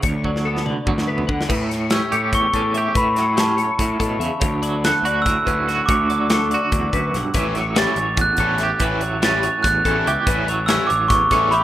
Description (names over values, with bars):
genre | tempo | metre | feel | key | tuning
math rock and midwest emo | 287 BPM (eighths) | 7/8 | straight | unclear | A4 = 440 Hz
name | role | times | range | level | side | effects
twangy electric guitar | accompaniment | 0.0-11.6 s | D2 to G4 | -25 LUFS | right 4 dB | tremolo
twelve-string electric guitar | arpeggios | 0.0-11.6 s | G4 to F#5 | -27 LUFS | left 8 dB | ensemble chorus
fuzz picked electric bass | bass | 0.0-11.6 s | A1 to D3 | -24 LUFS | equal | overdrive
modern studio drum kit | drums | 0.0-11.6 s | crash cymbal, hi-hat, kick drum, snare drum, toms | -23 LUFS | equal | none
glockenspiel with rubber mallets | melody | 1.9-11.6 s | A5 to A6 | -20 LUFS | right 1 dB | none
biting overdriven guitar | riff | 7.3-11.6 s | E3 to E4 | -28 LUFS | left 2 dB | none
room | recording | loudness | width
light reverb | rough home demo mix | -17 LUFS | side -13 dB against mid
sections
0.0-1.5 A section; 1.5-11.6 B section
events
drum fill 0.3-1.5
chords
0.0 D6; 1.5 A13; 4.4 Dmaj7; 7.3 A13